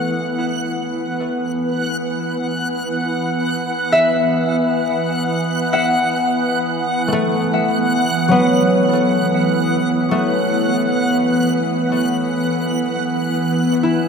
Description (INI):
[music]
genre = ambient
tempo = free time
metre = none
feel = none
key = unclear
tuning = A4 = 440 Hz
[part]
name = concert harp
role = arpeggios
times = 0.0-14.1 s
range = F#3 to F#5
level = -20 LUFS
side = left 1 dB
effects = ping-pong delay
[part]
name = organ-like drone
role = drone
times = 0.0-14.1 s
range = E3 to B3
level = -19 LUFS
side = right 1 dB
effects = ensemble chorus, built-in reverb
[part]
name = backwards swelling texture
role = texture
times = 0.0-14.1 s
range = F#5 to F#6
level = -24 LUFS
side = equal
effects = built-in reverb
[sound]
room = wet cathedral reverb, RT60 7.5 s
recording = none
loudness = -16 LUFS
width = side -6 dB against mid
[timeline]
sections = 0.0-14.1 A section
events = none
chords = 0.1 Esus24